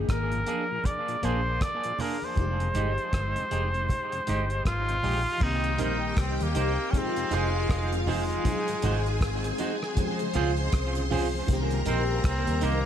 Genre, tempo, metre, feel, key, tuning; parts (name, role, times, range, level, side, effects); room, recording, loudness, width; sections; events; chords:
lovers rock reggae; 79 BPM; 4/4; swing 60% on 16ths; F dorian; A4 = 442 Hz
FM electric piano with soft pad layer; accompaniment; 0.0-12.9 s; Eb3 to Ab4; -34 LUFS; left 4 dB; chorus, phaser, dub echo
vintage muted fingered electric bass; bass; 0.0-12.8 s; F1 to Eb2; -29 LUFS; equal
breathy trumpet; melody; 0.1-12.9 s; Ab3 to D5; -31 LUFS; equal; tape echo
cloth-damped thuddy drum kit; drums; 0.1-12.8 s; crash cymbal, hi-hat, kick drum, rim click; -30 LUFS; equal; gated reverb
mellow tonewheel organ; accompaniment; 0.3-12.7 s; F2 to Ab4; -41 LUFS; left 4 dB
twangy electric guitar; stabs; 0.5-12.8 s; Ab3 to C5; -34 LUFS; right 6 dB; dub echo
congas; percussion; 0.5-12.8 s; -39 LUFS; right 4 dB
string machine, violins; second line; 5.4-12.9 s; F4 to C6; -33 LUFS; equal; ensemble chorus, dub echo
light reverb, studio reverb; -25 LUFS; side -9 dB against mid
0.0-5.4 A section; 5.4-12.9 B section
0.0 Bb7; 2.4 Fm9; 5.4 Cm7; 6.9 Fm7; 8.5 Ab7; 10.0 Dbmaj7; 11.5 Cm7